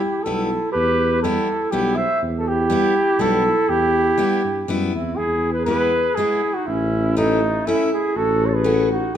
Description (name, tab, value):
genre	alpine folk, alpine dance band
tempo	122 BPM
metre	3/4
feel	straight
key	E minor, E major from 5.2 s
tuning	A4 = 441 Hz
part	mellow flugelhorn	melody	0.0-9.2 s	D#4 to E5	-20 LUFS	equal	none
part	clear clarinet	second line	0.0-9.2 s	A3 to C5	-26 LUFS	right 4 dB	none
part	picked steel-string acoustic guitar	accompaniment	0.3-8.9 s	G3 to F#4	-24 LUFS	left 2 dB	none
part	dark tuba	bass	0.3-9.1 s	A1 to G2	-24 LUFS	equal	none
room	moderate recital hall reverb, RT60 1.5 s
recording	minimal, uncompressed stereo recording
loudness	-17 LUFS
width	side -9 dB against mid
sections	0.0-5.2 A section; 5.2-9.2 B section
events	none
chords	0.0 Em; 5.2 E; 6.7 A; 8.1 F#m/A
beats	0.26 | 0.75 1.24 1.73 | 2.22 2.71 3.20 | 3.69 4.18 4.68 | 5.18 5.67 6.17 | 6.66 7.16 7.65 | 8.14 8.64 9.14